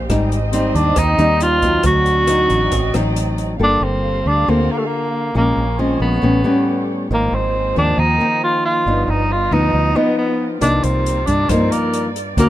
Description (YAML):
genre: bossa nova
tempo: 137 BPM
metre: 4/4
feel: straight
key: G minor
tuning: A4 = 440 Hz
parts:
  - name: nylon-string guitar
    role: accompaniment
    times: 0.0-12.5 s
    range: G2 to A4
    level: -19 LUFS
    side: left 2 dB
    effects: none
  - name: muted studio string section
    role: sustained chords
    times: 0.0-12.5 s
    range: Bb3 to F5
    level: -27 LUFS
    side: right 3 dB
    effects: none
  - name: fingered electric bass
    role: bass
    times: 0.0-12.5 s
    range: G1 to G2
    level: -19 LUFS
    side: right 1 dB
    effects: none
  - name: open jazz drum kit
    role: drums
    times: 0.1-3.5, 10.6-12.5 s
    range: hi-hat, kick drum, rim click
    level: -24 LUFS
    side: equal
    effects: none
  - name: breathy tenor saxophone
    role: melody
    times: 0.5-12.5 s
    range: A3 to F#4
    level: -18 LUFS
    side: right 1 dB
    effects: none
room: little or no reverb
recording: close, detailed microphones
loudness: -14 LUFS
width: side -14 dB against mid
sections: 0.0-3.6 A section; 3.6-12.5 B section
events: none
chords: 0.1 Abmaj7; 1.8 D7b9; 3.6 Gm9; 5.3 Bbm7; 6.2 A9; 7.1 Ab69; 8.9 G7b13; 10.6 Cm11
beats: | 0.09 0.53 0.97 1.41 | 1.84 2.28 2.72 3.16 | 3.60 4.03 4.47 4.91 | 5.35 5.79 6.23 6.66 | 7.10 7.54 7.98 8.42 | 8.86 9.29 9.73 10.17 | 10.61 11.05 11.48 11.92 | 12.36